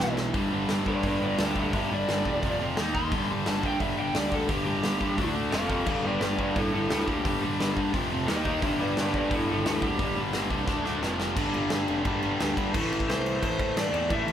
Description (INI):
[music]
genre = punk rock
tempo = 174 BPM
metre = 4/4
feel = straight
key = unclear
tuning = A4 = 440 Hz
[part]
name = lead guitar through a small cranked amp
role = melody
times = 0.0-10.2, 13.1-14.3 s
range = E4 to C6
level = -30 LUFS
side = equal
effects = overdrive
[part]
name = crunchy overdriven guitar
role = riff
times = 0.0-12.7 s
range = E2 to D#4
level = -33 LUFS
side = right 8 dB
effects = none
[part]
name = distorted electric guitar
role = riff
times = 0.0-14.3 s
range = E2 to D#4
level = -32 LUFS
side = left 8 dB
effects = overdrive
[part]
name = fuzz guitar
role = riff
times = 0.0-14.3 s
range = E2 to D#4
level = -32 LUFS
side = equal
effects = distortion
[part]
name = fuzz picked electric bass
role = bass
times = 0.0-14.3 s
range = E1 to A2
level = -34 LUFS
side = equal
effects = overdrive
[part]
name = big rock drum kit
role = drums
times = 0.0-14.3 s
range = crash cymbal, hi-hat, kick drum, snare drum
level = -31 LUFS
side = equal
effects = none
[sound]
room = moderate large studio reverb, RT60 1.5 s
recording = band playing live in one room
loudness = -24 LUFS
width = side -10 dB against mid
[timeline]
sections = 0.3-11.4 A section; 11.4-12.7 B section; 12.7-14.3 C section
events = drum fill 0.0-0.3, 10.7-11.4; lead electric guitar solo 0.3-11.4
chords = 0.3 G; 2.4 F5; 2.8 D#5; 3.1 G5; 5.2 D5; 5.5 F5; 5.9 G; 7.9 F5; 8.3 D#5; 8.6 G; 10.7 D5; 11.0 F5; 11.4 G5; 12.7 Am